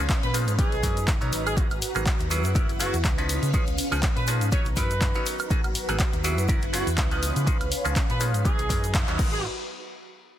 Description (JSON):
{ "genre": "filtered disco house", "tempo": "122 BPM", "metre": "4/4", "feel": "swing 55% on 16ths", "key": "unclear", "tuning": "A4 = 445 Hz", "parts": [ { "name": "bright clav", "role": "accompaniment", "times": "0.0-9.4 s", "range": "E#3 to C#5", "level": "-32 LUFS", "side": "equal", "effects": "phaser, sidechain pumping" }, { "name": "string machine, full ensemble", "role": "sustained chords", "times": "0.0-9.4 s", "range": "C#4 to A#5", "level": "-33 LUFS", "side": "right 1 dB", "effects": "phaser, ensemble chorus, sidechain pumping" }, { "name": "overdriven fingered electric bass", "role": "bass", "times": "0.0-9.4 s", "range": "F#1 to C#3", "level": "-28 LUFS", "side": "equal", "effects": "sidechain pumping" }, { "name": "electronic kick drum", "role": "drums", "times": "0.1-9.3 s", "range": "none", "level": "-25 LUFS", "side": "equal", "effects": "none" }, { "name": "punchy analog drum machine", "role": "drums", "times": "0.1-9.3 s", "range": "cabasa, crash cymbal, handclaps, hi-hat, woodblock", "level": "-31 LUFS", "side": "equal", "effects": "sidechain pumping on hats, sidechain pumping on perc, sidechain pumping on cymbals" }, { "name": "egg shaker", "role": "percussion", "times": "0.1-9.4 s", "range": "none", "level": "-42 LUFS", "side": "right 2 dB", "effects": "none" }, { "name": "warm horn section", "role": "melody", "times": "0.2-9.4 s", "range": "F#4 to C#5", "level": "-32 LUFS", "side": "right 1 dB", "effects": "vintage 12-bit sampler grit, sidechain pumping" } ], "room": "light reverb, digital ambience", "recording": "dense, heavily limited modern master", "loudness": "-22 LUFS", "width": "side -12 dB against mid", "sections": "0.0-9.4 A section", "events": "drop 0.0-9.4; band accent 8.9", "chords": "0.0 C#7; 0.6 Bmaj7; 1.6 G#m9; 2.3 F#7sus4; 3.3 C#7; 4.5 Bmaj7; 5.5 G#m9; 6.2 F#7sus4; 7.2 C#7; 8.5 Bmaj7; 9.2 G#m9; 9.4 N.C." }